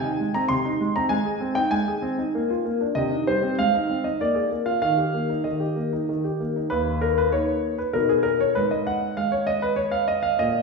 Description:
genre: classical-period piano sonatina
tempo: 97 BPM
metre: 3/4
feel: straight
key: Eb major, Eb minor from 6.7 s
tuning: A4 = 440 Hz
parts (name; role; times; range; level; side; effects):
- clear concert grand piano; solo; 0.0-10.6 s; Eb2 to C6; -21 LUFS; equal; none
room: wet recital hall reverb, RT60 1.4 s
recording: heard from further back in the room, studio reverb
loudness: -21 LUFS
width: side -3 dB against mid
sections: 0.0-6.7 A section; 6.7-10.6 B section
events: none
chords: 0.0 Ab; 2.3 Bb7; 2.9 Cm; 3.6 Ab; 4.2 Bb7; 4.8 Eb; 6.7 Eb5; 7.9 B; 8.6 N.C.

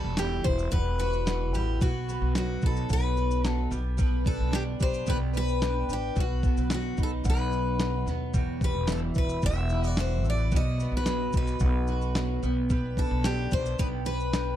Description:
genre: acoustic pop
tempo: 110 BPM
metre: 4/4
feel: straight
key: unclear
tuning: A4 = 440 Hz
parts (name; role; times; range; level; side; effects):
- picked steel-string acoustic guitar; melody; 0.0-14.6 s; F#4 to E5; -32 LUFS; left 3 dB; ping-pong delay
- picked plugged-in steel-string acoustic guitar; accompaniment; 0.0-14.6 s; E2 to B4; -32 LUFS; right 1 dB; double-tracked left and right
- mandolin; arpeggios; 0.0-14.6 s; G3 to G5; -42 LUFS; right 11 dB; none
- upright bass; bass; 0.0-14.6 s; E1 to D#2; -29 LUFS; equal; none
- dusty soul sampler-style drum kit; drums; 0.2-14.5 s; kick drum, shaker, snare drum; -29 LUFS; equal; none
- group handclap; percussion; 0.2-14.5 s; none; -43 LUFS; left 3 dB; none
room: little or no reverb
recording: dark, warm production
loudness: -25 LUFS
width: side -11 dB against mid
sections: 0.0-14.6 A section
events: none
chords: 0.0 Emadd9; 1.8 B; 3.7 G/B; 6.2 B; 8.3 Emadd9; 10.5 B; 12.4 G/B

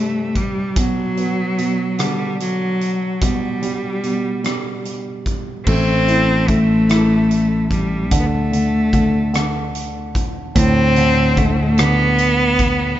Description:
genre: six-eight pop ballad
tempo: 49 BPM (dotted quarters)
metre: 6/8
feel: straight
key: G major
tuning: A4 = 440 Hz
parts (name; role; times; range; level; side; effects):
- clear cello; melody; 0.0-13.0 s; F#3 to C4; -18 LUFS; equal; tape echo
- warm baby grand piano; accompaniment; 0.0-13.0 s; G2 to E4; -23 LUFS; right 2 dB; none
- huge arena drum kit; drums; 0.4-12.8 s; crash cymbal, hi-hat, kick drum, rim click; -23 LUFS; equal; none
- fretless electric bass; bass; 5.7-13.0 s; A1 to D2; -19 LUFS; equal; none
room: light reverb, studio reverb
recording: rough home demo mix, nothing above 7.7 kHz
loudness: -15 LUFS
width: side -12 dB against mid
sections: 0.0-5.7 A section; 5.7-13.0 B section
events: none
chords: 0.0 C5; 0.8 G/B; 5.7 Am; 8.1 D5

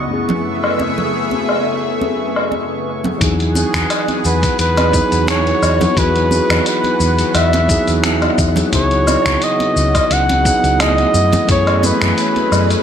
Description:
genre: sunset chillout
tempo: 87 BPM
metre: 4/4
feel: swing 54% on 16ths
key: E major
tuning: A4 = 440 Hz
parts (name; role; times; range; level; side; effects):
- mellow tine electric piano; accompaniment; 0.0-12.8 s; F#2 to G#4; -20 LUFS; moving between left 4 dB and right 4 dB; auto-pan, analog delay
- lush unison pad; sustained chords; 0.0-12.8 s; F#2 to F#5; -22 LUFS; left 1 dB; chorus, phaser
- drifting glass-harmonics texture; texture; 0.0-3.2 s; C#6; -30 LUFS; right 5 dB; chorus, built-in reverb
- congas; percussion; 0.3-12.5 s; none; -25 LUFS; right 2 dB; dub echo
- dusty soul sampler-style drum kit; drums; 0.6-12.8 s; cabasa, finger snaps, hi-hat, woodblock; -20 LUFS; left 1 dB; dub echo
- hollow-body short-scale fingered electric bass; bass; 3.2-12.7 s; C#2 to F#2; -18 LUFS; equal; none
- electronic kick drum; drums; 3.2-11.6 s; none; -19 LUFS; equal; none
- warm flugelhorn; melody; 3.6-12.8 s; G#4 to F#5; -17 LUFS; equal; analog delay
room: moderate echo chamber reverb, RT60 1.9 s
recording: echo-heavy mix, lossy compression artefacts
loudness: -13 LUFS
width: side -8 dB against mid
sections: 0.0-3.2 A section; 3.2-12.8 B section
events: none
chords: 0.1 F#m11; 3.2 Emaj9; 8.7 C#m11; 11.1 F#m11

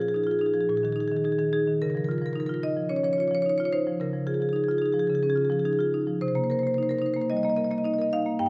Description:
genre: classical, contemporary piece for solo marimba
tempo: 109 BPM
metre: 4/4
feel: rubato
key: unclear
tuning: A4 = 440 Hz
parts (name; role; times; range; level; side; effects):
- marimba with medium hard mallets; solo; 0.0-8.5 s; G2 to G5; -26 LUFS; equal; none
room: wet recital hall reverb, RT60 1.5 s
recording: none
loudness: -26 LUFS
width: mono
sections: 0.0-8.5 A section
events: none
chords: 0.0 Fm7/Bb; 0.7 Bb7sus4; 1.8 Db69; 6.2 Cm7

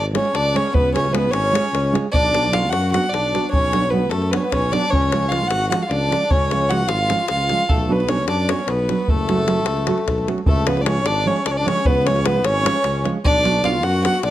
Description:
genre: balkan folk, Balkan wedding band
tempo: 302 BPM (eighths)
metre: 7/8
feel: straight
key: unclear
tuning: A4 = 440 Hz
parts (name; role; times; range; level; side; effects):
- dark fiddle; melody; 0.0-14.3 s; A4 to F#5; -21 LUFS; right 2 dB; none
- accordion; second line; 0.0-14.3 s; A3 to F#4; -24 LUFS; left 3 dB; light tremolo tuning
- dark tuba; bass; 0.0-14.3 s; F#1 to F#2; -23 LUFS; left 1 dB; none
- nylon-string guitar; accompaniment; 0.1-14.2 s; E#3 to G#4; -25 LUFS; right 4 dB; none
- davul; percussion; 0.1-14.3 s; none; -23 LUFS; left 1 dB; none
room: light reverb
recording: close, detailed microphones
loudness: -16 LUFS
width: side -13 dB against mid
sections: 0.0-10.5 A section; 10.5-14.3 A section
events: none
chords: 0.0 C#; 2.1 Bm; 4.9 C#; 7.7 Bm; 9.1 F#m; 10.5 C#; 13.2 Bm

